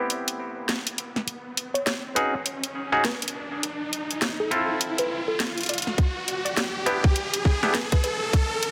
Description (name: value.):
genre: glitch hop.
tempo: 102 BPM.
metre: 4/4.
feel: swing 60% on 16ths.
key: E phrygian.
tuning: A4 = 441 Hz.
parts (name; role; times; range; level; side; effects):
woody wave-folded pluck; melody; 0.0-8.2 s; A4 to D5; -34 LUFS; equal; chorus, digital delay.
bright clav; stabs; 0.0-7.8 s; B3 to A4; -30 LUFS; equal; sidechain pumping, low-pass filter, digital delay.
riser; sound effects; 0.0-8.7 s; none; -33 LUFS; equal; none.
drum and bass drum kit; drums; 0.1-8.7 s; hi-hat, snare drum; -29 LUFS; equal; overdrive.
electronic kick drum; drums; 6.0-8.5 s; none; -23 LUFS; equal; overdrive.
room: moderate plate reverb, RT60 1.9 s.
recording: dense, heavily limited modern master.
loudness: -26 LUFS.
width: mono.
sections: 0.0-8.7 A section.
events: build-up 0.0-8.7; riser 0.0-8.7; filter sweep on clav 0.0-8.7.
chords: 0.0 Cmaj7/B; 1.3 C#sus4; 3.6 Dm9/C (rootless); 6.0 Em7.